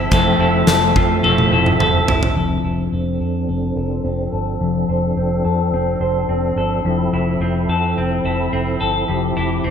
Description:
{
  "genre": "dream pop",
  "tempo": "107 BPM",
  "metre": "4/4",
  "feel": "straight",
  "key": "F major",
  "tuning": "A4 = 439 Hz",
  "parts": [
    { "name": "electric guitar at the edge of break-up", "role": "accompaniment", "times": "0.0-2.9 s", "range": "F3 to A4", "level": "-23 LUFS", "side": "right 6 dB", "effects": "harmonic tremolo, lush chorus" },
    { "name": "percussive tonewheel organ", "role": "sustained chords", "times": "0.0-9.7 s", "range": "F3 to E5", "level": "-22 LUFS", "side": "right 2 dB", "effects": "overdrive, chorus vibrato, slow rotary speaker, low-pass filter" },
    { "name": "semi-hollow electric guitar", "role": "arpeggios", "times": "0.0-9.7 s", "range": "F3 to C5", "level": "-19 LUFS", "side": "left 4 dB", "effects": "lush chorus, low-pass filter, digital delay" },
    { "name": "vintage muted fingered electric bass", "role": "bass", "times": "0.0-9.7 s", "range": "F1 to F2", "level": "-23 LUFS", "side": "equal", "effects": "none" },
    { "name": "huge arena drum kit", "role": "drums", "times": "0.1-2.4 s", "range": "hi-hat, kick drum, snare drum, tambourine, toms", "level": "-19 LUFS", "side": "equal", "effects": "gated reverb" }
  ],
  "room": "wet lush hall reverb, RT60 2.0 s",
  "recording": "bright 1980s-style digital production",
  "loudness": "-15 LUFS",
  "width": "side -7 dB against mid",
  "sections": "0.0-2.4 A section; 2.4-9.7 B section",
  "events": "drum fill 1.2-2.4; filter sweep 2.4-9.7",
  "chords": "0.0 Fmaj7; 2.4 F6; 6.8 Fmaj9"
}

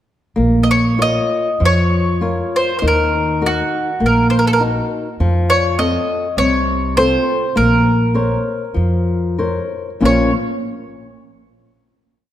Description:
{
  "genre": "fado-style ballad",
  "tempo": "100 BPM",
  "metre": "4/4",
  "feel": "rubato",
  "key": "Bb harmonic minor",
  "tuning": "A4 = 440 Hz",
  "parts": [
    { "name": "flamenco guitar", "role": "accompaniment", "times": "0.4-10.3 s", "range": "Bb2 to Db5", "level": "-18 LUFS", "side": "left 1 dB", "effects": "none" },
    { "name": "upright bass", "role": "bass", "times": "0.4-10.3 s", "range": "Bb1 to F2", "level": "-18 LUFS", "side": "equal", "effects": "none" },
    { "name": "mandolin", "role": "melody", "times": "0.6-10.3 s", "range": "Gb4 to Eb5", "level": "-18 LUFS", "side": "right 1 dB", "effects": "none" }
  ],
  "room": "wet concert hall reverb, RT60 1.9 s",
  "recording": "none",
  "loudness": "-14 LUFS",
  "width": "side -11 dB against mid",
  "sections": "0.4-10.0 A section; 10.0-12.3 final chord",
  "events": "none",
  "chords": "0.4 Bbm; 2.8 Ebm; 5.2 F; 7.6 Bbmadd9; 10.0 Bbm"
}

